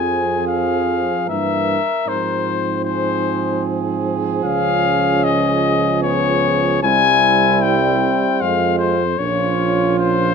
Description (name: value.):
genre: classical, brass quintet.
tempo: 76 BPM.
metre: 3/4.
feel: straight.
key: unclear.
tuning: A4 = 443 Hz.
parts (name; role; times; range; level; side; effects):
warm trumpet; melody; 0.0-10.3 s; C5 to Ab5; -18 LUFS; left 9 dB; none.
mellow trumpet; second line; 0.0-10.3 s; E4 to Bb4; -24 LUFS; right 9 dB; none.
mellow trombone; accompaniment; 0.0-10.3 s; E3 to Ab3; -24 LUFS; right 4 dB; none.
warm French horn; accompaniment; 0.0-10.3 s; Bb3 to Db4; -25 LUFS; left 3 dB; none.
warm tuba; bass; 0.0-10.3 s; Bb1 to Ab2; -22 LUFS; right 6 dB; none.
room: moderate large studio reverb, RT60 0.9 s.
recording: none.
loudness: -15 LUFS.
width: side -6 dB against mid.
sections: 0.0-10.3 A section.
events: none.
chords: 0.0 Fm; 1.3 Edim/G; 2.1 Fm/Ab; 4.4 Db; 6.0 Db7; 6.8 C; 8.4 Fm; 9.2 Bbm.